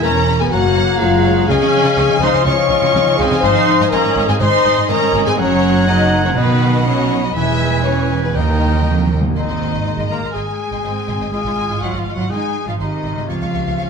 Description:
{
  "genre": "cinematic",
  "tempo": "122 BPM",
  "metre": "4/4",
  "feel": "straight",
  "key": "unclear",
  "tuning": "A4 = 437 Hz",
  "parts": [
    { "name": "warm symphonic violin section", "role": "melody", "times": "0.0-13.9 s", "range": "Bb4 to Db6", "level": "-21 LUFS", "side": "left 2 dB", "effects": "none" },
    { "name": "mellow clarinet", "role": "second line", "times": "0.0-13.9 s", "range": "Eb4 to Eb5", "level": "-26 LUFS", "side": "left 2 dB", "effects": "none" },
    { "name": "mellow cor anglais", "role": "second line", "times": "0.0-9.1 s", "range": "Eb5 to G#5", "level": "-26 LUFS", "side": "right 4 dB", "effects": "none" },
    { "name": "mellow hollow silver concert flute", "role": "second line", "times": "0.0-9.1 s", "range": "Ab5 to B5", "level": "-28 LUFS", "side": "left 1 dB", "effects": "none" },
    { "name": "warm symphonic violin section", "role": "second line", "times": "0.0-13.8 s", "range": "B4 to Db6", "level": "-28 LUFS", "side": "left 2 dB", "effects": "none" },
    { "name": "warm symphonic viola section", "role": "accompaniment", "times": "0.0-13.9 s", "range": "C3 to F4", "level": "-22 LUFS", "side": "right 2 dB", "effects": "none" },
    { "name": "warm French horn section", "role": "sustained chords", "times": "0.0-9.1 s", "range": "Bb3 to Db5", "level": "-18 LUFS", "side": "left 5 dB", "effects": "none" },
    { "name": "concert harp", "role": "arpeggios", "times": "0.0-13.9 s", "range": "E2 to Eb6", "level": "-26 LUFS", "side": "left 8 dB", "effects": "none" },
    { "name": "rich symphonic cello section", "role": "bass", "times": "0.0-13.9 s", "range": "Eb2 to Bb3", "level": "-22 LUFS", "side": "right 3 dB", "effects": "none" },
    { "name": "rich symphonic double bass section", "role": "bass", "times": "0.0-13.8 s", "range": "E1 to Eb2", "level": "-21 LUFS", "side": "right 4 dB", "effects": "none" },
    { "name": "timpani", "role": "percussion", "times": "8.4-9.3 s", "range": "Eb3", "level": "-24 LUFS", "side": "equal", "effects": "none" }
  ],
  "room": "wet recital hall reverb, RT60 1.4 s",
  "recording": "none",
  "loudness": "-13 LUFS",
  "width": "side -5 dB against mid",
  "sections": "0.0-9.4 A section; 9.4-13.9 B section",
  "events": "timpani fill 8.4-9.4",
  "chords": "0.0 E; 0.5 Gb; 1.5 Dbadd9; 3.4 Ab; 5.4 Gb; 6.4 B; 7.4 E; 8.4 Eb; 9.4 Ab; 13.3 Db",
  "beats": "0.03 0.52 1.00 | 1.49 1.98 2.46 2.95 | 3.44 3.93 4.41 4.90 | 5.39 5.88 6.37 6.87 | 7.36 7.85 8.35 8.86 | 9.36 9.85 10.34 10.84 | 11.33 11.82 12.31 12.80 | 13.29 13.78"
}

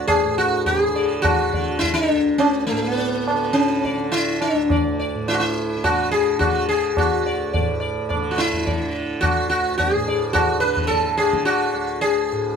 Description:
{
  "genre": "indian classical, Hindustani",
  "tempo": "106 BPM",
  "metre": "4/4",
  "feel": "straight",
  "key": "D raga yaman",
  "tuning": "A4 = 436 Hz",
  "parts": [
    { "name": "sitar", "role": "melody", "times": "0.0-12.6 s", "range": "B3 to D5", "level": "-19 LUFS", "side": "left 1 dB", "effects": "none" },
    { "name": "tanpura", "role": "drone", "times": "0.0-12.6 s", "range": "D2 to D3", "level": "-28 LUFS", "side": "right 3 dB", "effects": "none" },
    { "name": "tabla", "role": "percussion", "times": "0.1-12.2 s", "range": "none", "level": "-25 LUFS", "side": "equal", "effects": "none" }
  ],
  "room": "light reverb",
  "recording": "close, detailed microphones",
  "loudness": "-18 LUFS",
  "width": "side -6 dB against mid",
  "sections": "0.0-12.6 A section",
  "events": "speeding up 0.0-12.6",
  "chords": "none",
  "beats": "| 0.09 0.67 1.25 1.82 | 2.40 2.98 3.55 4.13 | 4.70 5.27 5.84 6.41 | 6.98 7.55 8.11 8.67 | 9.24 9.80 10.36 10.91 | 11.47 12.02"
}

